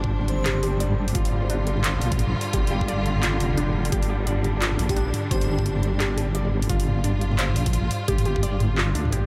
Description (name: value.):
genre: half-time drum and bass.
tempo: 173 BPM.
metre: 4/4.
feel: swing 59% on 16ths, half-time.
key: G minor.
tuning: A4 = 440 Hz.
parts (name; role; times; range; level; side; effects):
clear studio string section; sustained chords; 0.0-9.3 s; D3 to F4; -33 LUFS; equal; sidechain pumping.
warbly dusty pluck; arpeggios; 0.0-9.2 s; D4 to D5; -34 LUFS; equal; chorus, phaser, diffuse ambient delay.
deep soft wobble bass; bass; 0.0-9.3 s; F1 to D2; -27 LUFS; equal; chorus, tube saturation.
drum and bass drum kit; drums; 0.0-9.2 s; handclaps, hi-hat, toms; -30 LUFS; equal; overdrive.
electronic kick drum; drums; 0.0-8.4 s; none; -29 LUFS; equal; overdrive.
airy dreamy lead; melody; 0.3-0.8, 4.9-5.6 s; G4 to C5; -38 LUFS; equal; chorus, diffuse ambient delay.
room: moderate cathedral reverb, RT60 5.2 s.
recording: dreamy mix soaked in reverb.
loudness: -23 LUFS.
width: mono.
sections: 0.0-9.3 A section.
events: none.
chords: 0.0 G5.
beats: 0.11 0.46 0.80 | 1.15 1.50 1.84 2.19 | 2.54 2.88 3.23 3.58 | 3.92 4.27 4.62 4.96 | 5.31 5.66 6.00 6.35 | 6.70 7.04 7.39 7.74 | 8.09 8.43 8.78 9.13.